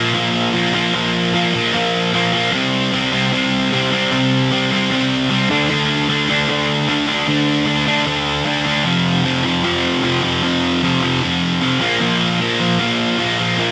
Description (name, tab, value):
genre	punk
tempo	152 BPM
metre	4/4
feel	straight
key	unclear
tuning	A4 = 439 Hz
part	sludgy distorted guitar	solo	0.0-13.7 s	F2 to D4	-16 LUFS	equal	overdrive
room	moderate studio reverb, RT60 0.6 s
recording	band playing live in one room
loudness	-16 LUFS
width	mono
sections	0.0-2.5 A section; 2.5-13.7 B section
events	none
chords	0.0 Bb5; 2.5 C5; 5.5 D5; 8.9 F5; 11.8 Bb5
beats	0.14 0.54 | 0.94 1.34 1.74 2.13 | 2.53 2.93 3.33 3.72 | 4.12 4.51 4.91 5.30 | 5.70 6.09 6.49 6.88 | 7.28 7.67 8.07 8.46 | 8.85 9.25 9.64 10.04 | 10.43 10.82 11.22 11.61 | 12.01 12.40 12.80 13.19 | 13.59